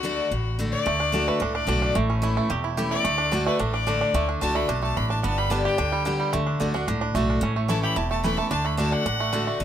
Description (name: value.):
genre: bluegrass.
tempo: 220 BPM.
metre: 4/4.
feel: straight.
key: D major.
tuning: A4 = 441 Hz.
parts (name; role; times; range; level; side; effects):
rich fiddle; second line; 0.0-9.6 s; F#4 to B5; -28 LUFS; left 4 dB; none.
picked steel-string acoustic guitar; accompaniment; 0.0-9.6 s; E2 to G4; -26 LUFS; left 2 dB; none.
upright bass; bass; 0.0-9.6 s; E1 to D2; -28 LUFS; equal; none.
bluegrass banjo; arpeggios; 0.9-9.6 s; D3 to G4; -27 LUFS; right 6 dB; none.
room: light reverb.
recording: none.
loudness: -22 LUFS.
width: side -10 dB against mid.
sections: 0.0-9.6 A section.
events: fiddle solo 0.0-9.6.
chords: 0.0 D; 2.0 A; 3.0 D; 5.2 G; 6.3 D; 7.4 A; 8.5 D.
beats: 0.04 0.31 0.58 | 0.86 1.13 1.41 1.68 | 1.95 2.23 2.50 2.78 | 3.05 3.32 3.60 3.87 | 4.14 4.42 4.69 4.96 | 5.24 5.51 5.78 6.05 | 6.33 6.60 6.87 7.14 | 7.42 7.69 7.96 8.24 | 8.51 8.78 9.06 9.33 | 9.60.